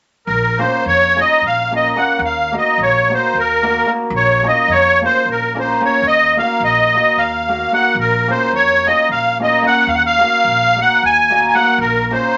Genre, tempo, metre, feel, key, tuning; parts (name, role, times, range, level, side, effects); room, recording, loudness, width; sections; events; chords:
balkan folk; 219 BPM (eighths); 7/8; straight; Bb minor; A4 = 440 Hz
musette accordion; melody; 0.3-12.4 s; Bb4 to Ab5; -15 LUFS; equal
upright bass; bass; 0.3-12.1 s; Bb1 to F2; -28 LUFS; equal
cimbalom; accompaniment; 0.6-12.3 s; Bb3 to Bb4; -23 LUFS; equal
moderate studio reverb, RT60 0.6 s; nothing above 7.8 kHz; -14 LUFS; mono
0.3-12.4 A section
0.3 Bbm; 2.2 Ebm; 4.1 Bbm; 6.0 Ebm; 7.9 Bbm; 9.9 Ebm; 11.8 Bbm